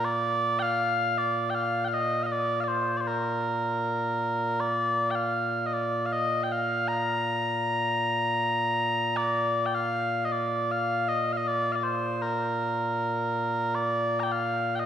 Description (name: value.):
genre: scottish traditional, Scottish pipe music.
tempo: 79 BPM.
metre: 3/4.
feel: straight.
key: Bb major.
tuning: A4 = 439 Hz.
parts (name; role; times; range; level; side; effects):
mellow small bagpipes; solo; 0.0-14.9 s; Bb2 to Bb5; -25 LUFS; equal; none.
room: wet scoring stage reverb, RT60 2.1 s.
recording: heard from further back in the room.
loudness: -25 LUFS.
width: side -9 dB against mid.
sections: 0.0-9.2 A section; 9.2-14.9 A section.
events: none.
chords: none.